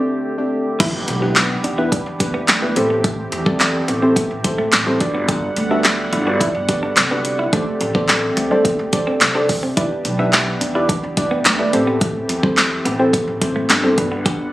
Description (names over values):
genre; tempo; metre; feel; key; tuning
dance-pop; 107 BPM; 4/4; straight; unclear; A4 = 440 Hz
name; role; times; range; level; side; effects
deep mellow chord stab; accompaniment; 0.0-14.5 s; A3 to E5; -20 LUFS; equal; chorus, sidechain pumping
warm analog pad; sustained chords; 0.0-14.5 s; D3 to F#5; -25 LUFS; equal; chorus, sidechain pumping
clean electric guitar; riff; 0.8-14.4 s; G3 to G4; -25 LUFS; right 2 dB; analog chorus
upright bass; bass; 0.8-14.4 s; G1 to E2; -24 LUFS; equal; sidechain pumping
deep house drum kit; drums; 0.8-14.4 s; crash cymbal, handclaps, hi-hat, kick drum, snare drum; -17 LUFS; equal; none
impact; sound effects; 0.8-3.0 s; none; -30 LUFS; equal; none
room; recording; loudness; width
light reverb; recorded on a phone in the room, studio reverb, compression; -15 LUFS; side -16 dB against mid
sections
0.8-14.5 A section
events
break 0.0-0.8; drop 0.8-14.5; impact 0.8-3.0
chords
0.0 D7sus4; 0.8 Em7; 2.8 Am7; 5.0 Gmaj7; 7.5 D7sus4; 9.8 Em7; 11.7 Am7; 14.0 Gmaj7